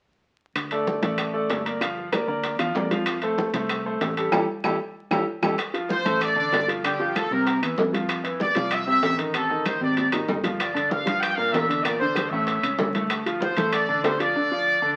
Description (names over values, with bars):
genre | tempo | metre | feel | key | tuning
latin, salsa | 192 BPM | 4/4 | straight | D minor | A4 = 438 Hz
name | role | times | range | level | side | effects
fingered electric bass | bass | 0.6-14.8 s | G1 to G2 | -36 LUFS | equal | none
bongos | percussion | 0.6-14.2 s | none | -36 LUFS | equal | none
claves | percussion | 0.6-13.9 s | none | -38 LUFS | equal | none
congas | percussion | 0.6-14.4 s | none | -34 LUFS | equal | none
timbales | percussion | 0.6-14.4 s | none | -30 LUFS | equal | none
bright grand piano | accompaniment | 0.7-15.0 s | A2 to F5 | -29 LUFS | equal | none
bright trumpet section | melody | 5.9-15.0 s | G4 to G5 | -26 LUFS | equal | none
room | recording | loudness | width
moderate studio reverb, RT60 0.7 s | very old 78 rpm record, vinyl crackle | -24 LUFS | mono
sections
0.6-5.6 A section; 5.6-15.0 B section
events
band accent 4.3-5.6; drum fill 4.6-5.6, 9.7-10.6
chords
0.6 D5; 1.8 Gm7; 3.1 Fadd9; 4.3 A5; 5.6 Dm7; 6.8 G5; 7.5 C; 8.1 Fmaj7; 9.3 Adim; 10.0 G#; 10.6 Gm7; 11.8 Amadd11; 12.5 A; 13.1 Dm7